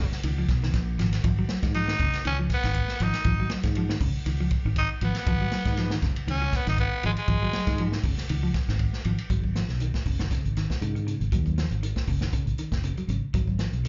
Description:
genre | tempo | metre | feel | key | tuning
afrobeat | 119 BPM | 4/4 | swing 54% on 16ths | G# dorian | A4 = 440 Hz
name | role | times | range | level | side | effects
breathy tenor saxophone | melody | 0.0-7.9 s | G#3 to D#4 | -31 LUFS | equal | none
electric guitar at the edge of break-up | arpeggios | 0.0-13.9 s | C#3 to F#3 | -34 LUFS | equal | slapback echo
fingered electric bass | bass | 0.0-13.9 s | F#1 to G#2 | -30 LUFS | equal | none
vintage drum kit | drums | 0.1-13.9 s | hi-hat, kick drum, ride cymbal, snare drum | -31 LUFS | equal | none
room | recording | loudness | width
little or no reverb | live gig heard through the venue's PA, club reverb, nothing above 7.5 kHz | -26 LUFS | mono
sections
0.0-9.3 A section; 9.3-13.9 B section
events
none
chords
0.0 G#m; 9.3 G#7(no3)

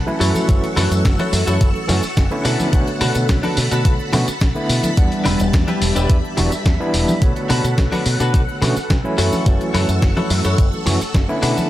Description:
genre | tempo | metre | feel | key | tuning
nu-disco, nu disco | 107 BPM | 4/4 | straight | B minor | A4 = 440 Hz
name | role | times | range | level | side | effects
string machine, full ensemble | sustained chords | 0.0-11.7 s | G3 to E6 | -25 LUFS | equal | phaser, ensemble chorus, sidechain pumping
fingered electric bass with an envelope filter | bass | 0.0-11.5 s | E1 to B2 | -20 LUFS | equal | none
overdriven tine electric piano | accompaniment | 0.1-11.7 s | D3 to F#5 | -22 LUFS | equal | fast tremolo, analog delay
cabasa and congas | percussion | 0.1-11.7 s | none | -26 LUFS | right 1 dB | none
direct-recorded clean electric guitar | riff | 0.2-11.7 s | D4 to C#5 | -25 LUFS | left 2 dB | lush chorus, analog delay
dusty soul sampler-style drum kit | drums | 0.2-11.7 s | hi-hat, snare drum, tambourine, woodblock | -24 LUFS | left 1 dB | none
electronic kick drum | drums | 0.5-11.3 s | none | -16 LUFS | equal | none
room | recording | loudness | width
digital ambience | none | -15 LUFS | side -14 dB against mid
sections
0.0-11.7 A section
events
none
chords
0.2 F#m7; 2.5 Bm7; 5.0 Em7; 7.2 Bm7; 9.2 F#m7

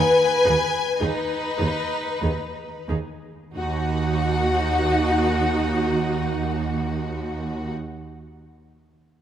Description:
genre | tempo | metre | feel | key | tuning
classical, slow romantic movement for string orchestra | 42-58 BPM | 3/4 | rubato | Eb minor | A4 = 440 Hz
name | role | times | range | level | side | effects
warm symphonic violin section | melody | 0.0-7.7 s | Gb4 to Ab5 | -28 LUFS | left 6 dB | none
rich chamber violin section | second line | 0.0-7.7 s | Eb4 to Gb5 | -24 LUFS | left 2 dB | none
rich symphonic double bass section | bass | 0.0-7.7 s | Eb2 | -28 LUFS | right 3 dB | none
bright symphonic viola section | accompaniment | 0.4-7.7 s | Eb4 to Ab4 | -28 LUFS | right 2 dB | none
rich symphonic cello section | bass | 0.5-7.7 s | Eb2 | -28 LUFS | right 3 dB | none
room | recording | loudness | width
moderate concert hall reverb, RT60 2.5 s | none | -21 LUFS | side -10 dB against mid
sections
0.0-3.6 A section; 3.6-7.3 B section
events
slowing down 0.0-3.6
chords
0.0 Abm/Eb; 3.6 Ebm

